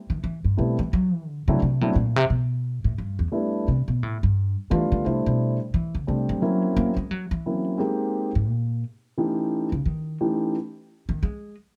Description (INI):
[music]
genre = jazz piano trio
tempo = 174 BPM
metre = 4/4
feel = swing 64% on 8ths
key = G major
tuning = A4 = 440 Hz
[part]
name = upright bass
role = bass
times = 0.1-11.5 s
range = E2 to A#3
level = -26 LUFS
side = equal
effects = none
[part]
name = dark baby grand piano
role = melody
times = 0.6-10.5 s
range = E3 to C5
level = -27 LUFS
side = equal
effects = none
[sound]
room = light reverb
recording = close, detailed microphones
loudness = -25 LUFS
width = mono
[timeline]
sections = 0.0-5.0 A section; 5.0-11.8 A section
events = upright bass solo 0.0-11.8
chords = 0.0 Am9; 0.9 D9; 2.3 G6; 3.7 Gadd9; 4.3 G7; 5.0 C6; 6.4 F#7#11; 7.8 Abmaj9; 9.2 A7#11; 10.5 Ab5